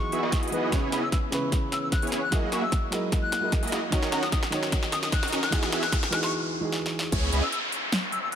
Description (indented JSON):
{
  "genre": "future bass",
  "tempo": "150 BPM",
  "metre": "4/4",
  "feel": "half-time",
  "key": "C# dorian",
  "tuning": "A4 = 439 Hz",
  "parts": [
    { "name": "bright reedy wooden flute", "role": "melody", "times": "0.0-8.4 s", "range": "A#5 to F#6", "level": "-32 LUFS", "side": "left 3 dB", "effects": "sidechain pumping, ping-pong delay" },
    { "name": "dark grand piano", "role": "accompaniment", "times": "0.0-7.1 s", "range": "C#3 to D#5", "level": "-32 LUFS", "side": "right 2 dB", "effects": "sidechain pumping, ping-pong delay" },
    { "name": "airy breathy pad", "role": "sustained chords", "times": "0.0-6.3 s", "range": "E3 to D#5", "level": "-39 LUFS", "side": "left 2 dB", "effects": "none" },
    { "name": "supersaw chords", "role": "riff", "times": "0.1-7.4 s", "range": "A#3 to F#5", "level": "-31 LUFS", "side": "right 1 dB", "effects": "sidechain pumping, low-pass filter" },
    { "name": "big-room dance drum kit", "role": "drums", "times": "0.1-8.4 s", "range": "crash cymbal, hi-hat, snare drum", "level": "-31 LUFS", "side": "equal", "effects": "overdrive, high-pass filter on snare, high-pass filter on hats, high-pass filter on cymbals" },
    { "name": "electronic kick drum", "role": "drums", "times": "0.3-7.2 s", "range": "none", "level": "-27 LUFS", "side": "equal", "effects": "none" },
    { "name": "riser and downlifter", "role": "sound effects", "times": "3.2-8.4 s", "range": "none", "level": "-34 LUFS", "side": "left 1 dB", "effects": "none" },
    { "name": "saturated sub bass", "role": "bass", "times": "7.1-7.4 s", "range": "C#2", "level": "-26 LUFS", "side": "equal", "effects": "sidechain pumping" }
  ],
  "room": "moderate lush hall reverb, RT60 1.9 s, digital ambience",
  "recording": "none",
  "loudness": "-24 LUFS",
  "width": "side -9 dB against mid",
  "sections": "0.0-7.1 A section; 7.1-8.4 B section",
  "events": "build-up 0.0-7.1; drum fill 0.0-6.3, 6.7-7.1; riser 3.2-6.3; break 6.3-7.1; drop 7.1-8.4",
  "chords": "0.0 Emaj9; 0.7 C#m7; 2.3 F#13; 3.9 D#m7; 5.5 Emaj9; 7.1 C#m7"
}